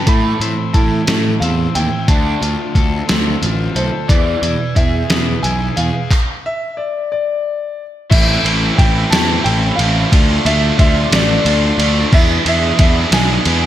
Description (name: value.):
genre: indie rock.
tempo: 60 BPM (dotted quarters).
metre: 6/8.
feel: straight.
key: A minor.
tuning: A4 = 441 Hz.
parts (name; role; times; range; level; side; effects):
clear upright piano; melody; 0.0-13.7 s; C5 to B5; -21 LUFS; left 1 dB; slapback echo.
distorted electric guitar; riff; 0.0-13.7 s; E2 to G#4; -22 LUFS; right 7 dB; distortion, lush chorus, slapback echo.
overdriven electric guitar; riff; 0.0-13.7 s; A2 to A4; -22 LUFS; left 6 dB; none.
fuzz picked electric bass; bass; 0.1-13.7 s; A1 to A2; -17 LUFS; equal; overdrive.
lo-fi sampler-style drum kit; drums; 0.1-13.6 s; crash cymbal, handclaps, hi-hat, kick drum, ride cymbal, snare drum; -15 LUFS; equal; none.
room: light reverb.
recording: none.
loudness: -12 LUFS.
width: side -12 dB against mid.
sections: 0.0-8.1 A section; 8.1-13.7 B section.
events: stop 6.1-8.1.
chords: 0.1 Amadd9; 2.1 Dm7; 4.1 E7; 6.1 N.C.; 8.1 Am; 10.1 Dm; 12.1 E7.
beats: | 0.07 1.07 | 2.08 3.09 | 4.09 5.10 | 6.10 7.11 | 8.11 9.11 | 10.12 11.12 | 12.12 13.12.